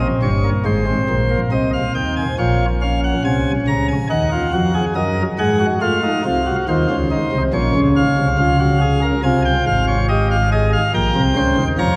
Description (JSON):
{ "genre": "classical, baroque-style 3-part fugue for pipe organ", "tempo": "70 BPM", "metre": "4/4", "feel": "straight", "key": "Bb minor", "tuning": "A4 = 445 Hz", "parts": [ { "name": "chamber organ, principal chorus", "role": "solo", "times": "0.0-12.0 s", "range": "G1 to Bb5", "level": "-17 LUFS", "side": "equal", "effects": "none" } ], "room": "wet church reverb, RT60 3.0 s", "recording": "none", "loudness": "-17 LUFS", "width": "mono", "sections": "0.0-2.4 A section; 2.4-12.0 B section", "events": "none", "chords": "0.0 Eb7 (rootless); 0.7 Ab; 2.4 Bbm; 4.1 Gbmaj13/Eb; 5.8 F7; 7.5 Bbm; 9.2 Fm; 10.9 Gm7b5/Bb", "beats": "0.67 1.52 | 2.39 3.25 4.11 4.96 | 5.82 6.68 7.54 8.39 | 9.24 10.09 10.95 11.79" }